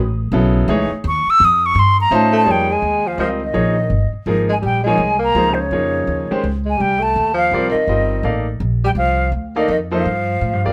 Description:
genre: modal jazz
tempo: 166 BPM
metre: 3/4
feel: swing 63% on 8ths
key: Bb dorian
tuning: A4 = 440 Hz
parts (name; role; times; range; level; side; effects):
- upright bass; bass; 0.0-10.7 s; G1 to A2; -22 LUFS; equal; none
- clear concert grand piano; accompaniment; 0.3-10.7 s; C#3 to F5; -22 LUFS; equal; none
- hollow concert flute; melody; 1.1-10.7 s; C5 to E6; -19 LUFS; equal; plate reverb
- breathy tenor saxophone; second line; 2.3-10.7 s; C3 to Bb3; -24 LUFS; equal; none
room: moderate studio ambience, RT60 0.5 s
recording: none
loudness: -17 LUFS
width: mono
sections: 0.0-2.5 A section; 2.5-10.7 B section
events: flute solo 0.0-2.5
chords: 0.0 F#9sus4; 1.4 F7b13; 2.5 Bbm11; 6.8 Cm11

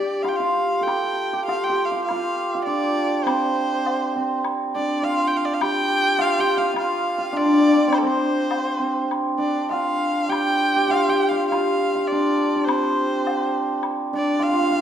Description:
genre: chinese traditional, Chinese chamber ensemble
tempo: 102 BPM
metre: 4/4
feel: rubato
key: G shang mode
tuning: A4 = 439 Hz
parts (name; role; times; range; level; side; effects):
- clear erhu; melody; 0.0-14.8 s; A4 to G5; -25 LUFS; equal; none
- hammered dulcimer; second line; 0.0-14.8 s; C4 to A4; -20 LUFS; equal; none
- woodblock; percussion; 0.2-14.0 s; none; -31 LUFS; left 5 dB; none
room: wet recital hall reverb, RT60 1.4 s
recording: none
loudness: -19 LUFS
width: side -9 dB against mid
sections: 0.9-14.8 A section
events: none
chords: none

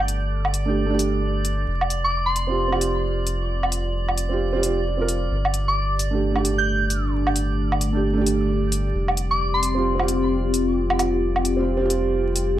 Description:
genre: future garage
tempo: 132 BPM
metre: 4/4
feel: swing 61% on 16ths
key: unclear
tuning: A4 = 440 Hz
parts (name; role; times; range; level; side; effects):
- felt-muted upright piano; accompaniment; 0.0-12.6 s; A3 to Bb4; -26 LUFS; right 4 dB; sidechain pumping, digital delay
- dark analog pad; sustained chords; 0.0-12.6 s; A3 to A4; -27 LUFS; left 2 dB; chorus, sidechain pumping
- soft dub sub bass; bass; 0.0-12.6 s; F1 to G1; -24 LUFS; equal; sidechain pumping
- drifting glass-harmonics texture; texture; 0.0-12.6 s; D5; -33 LUFS; right 4 dB; chorus, built-in reverb
- electronic hi-hat and woodblock; drums; 0.1-12.5 s; none; -24 LUFS; right 1 dB; overdrive
- soft synth bell; melody; 2.0-2.9, 5.7-10.2 s; C6 to G6; -27 LUFS; equal; chorus, dub echo
room: light reverb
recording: vinyl crackle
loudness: -20 LUFS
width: side -12 dB against mid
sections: 0.0-12.6 A section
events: filter sweep on analog synth pad 0.0-12.6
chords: 0.0 Gsus2; 1.7 Fsus2; 5.3 Gsus2; 8.9 Fsus2

